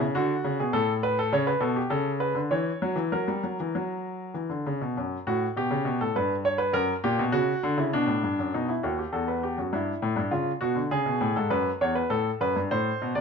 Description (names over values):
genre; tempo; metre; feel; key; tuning
classical, baroque-style two-part invention for grand piano; 101 BPM; 3/4; straight; B minor; A4 = 440 Hz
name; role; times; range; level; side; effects
clear baby grand piano; solo; 0.0-13.2 s; D#2 to D5; -24 LUFS; equal; none
room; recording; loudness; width
moderate stone room reverb, RT60 1.1 s; dark, warm production, nothing above 7.7 kHz; -24 LUFS; side -5 dB against mid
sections
0.0-5.0 A section; 5.0-8.5 B section; 8.5-13.2 A section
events
none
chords
0.0 E7 (rootless); 0.7 Asus2; 1.3 C#m7; 3.1 F#; 5.0 B5/F#; 6.2 G; 6.7 F#7; 7.9 Bm; 8.5 B7; 9.7 Em/G; 10.3 C#7; 11.5 F#5; 12.1 F#madd11; 12.7 Amadd9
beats
0.14 0.74 | 1.33 1.92 2.52 | 3.12 3.74 4.35 | 4.96 5.56 6.15 | 6.74 7.33 7.93 | 8.54 9.14 9.74 | 10.33 10.92 11.51 | 12.10 12.70